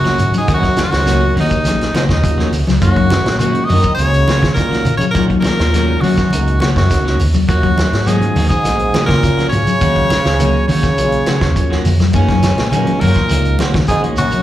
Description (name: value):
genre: afrobeat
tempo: 103 BPM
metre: 4/4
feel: straight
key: Eb minor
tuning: A4 = 440 Hz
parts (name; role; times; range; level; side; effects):
- edgy tenor saxophone; melody; 0.0-14.4 s; Db4 to Eb5; -18 LUFS; left 1 dB; slapback echo
- clear trombone section; second line; 0.0-14.4 s; Db2 to Eb3; -21 LUFS; right 2 dB; slapback echo
- bell-like tine electric piano; accompaniment; 0.0-14.1 s; Gb3 to Ab4; -25 LUFS; right 1 dB; phaser, slapback echo
- clean electric guitar; arpeggios; 0.0-14.4 s; Db3 to Gb3; -22 LUFS; left 7 dB; phaser
- clean electric guitar; stabs; 0.0-14.2 s; Eb3 to Gb4; -24 LUFS; right 4 dB; lush chorus, slapback echo
- hollow-body short-scale fingered electric bass; bass; 0.0-14.4 s; Bb1 to Gb3; -16 LUFS; equal; none
- vintage drum kit; drums; 0.1-14.4 s; hi-hat, kick drum, snare drum; -19 LUFS; equal; none
- congas; percussion; 0.2-14.4 s; none; -22 LUFS; right 1 dB; none
- shekere; percussion; 0.2-14.4 s; none; -29 LUFS; right 2 dB; none
room: light reverb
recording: live gig heard through the venue's PA, club reverb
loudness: -12 LUFS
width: side -13 dB against mid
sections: 0.0-14.4 A section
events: none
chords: 0.0 Ebm7; 2.8 Gb6; 7.5 Ebm7; 12.1 Gb6